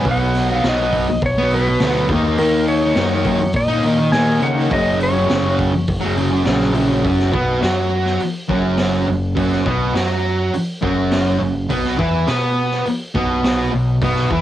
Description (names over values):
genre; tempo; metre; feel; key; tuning
garage rock duo or trio; 103 BPM; 4/4; straight; F# major; A4 = 440 Hz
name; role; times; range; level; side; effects
clean lap steel guitar; melody; 0.0-5.6 s; A#4 to G#5; -20 LUFS; equal; cassette tape, tape echo
fuzz guitar; riff; 0.0-14.4 s; F#2 to B4; -18 LUFS; equal; distortion, cassette tape
growling picked electric bass; bass; 0.0-14.4 s; F#1 to C#3; -21 LUFS; equal; overdrive
raw garage drum kit; drums; 0.1-14.4 s; hi-hat, kick drum, snare drum; -24 LUFS; equal; cassette tape
room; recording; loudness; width
light reverb; home recording on cassette; -15 LUFS; side -12 dB against mid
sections
0.0-7.0 A section; 7.0-14.4 B section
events
none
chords
0.0 B; 2.1 D#m; 4.7 F#; 7.0 F#sus4; 11.7 Asus2 (rootless)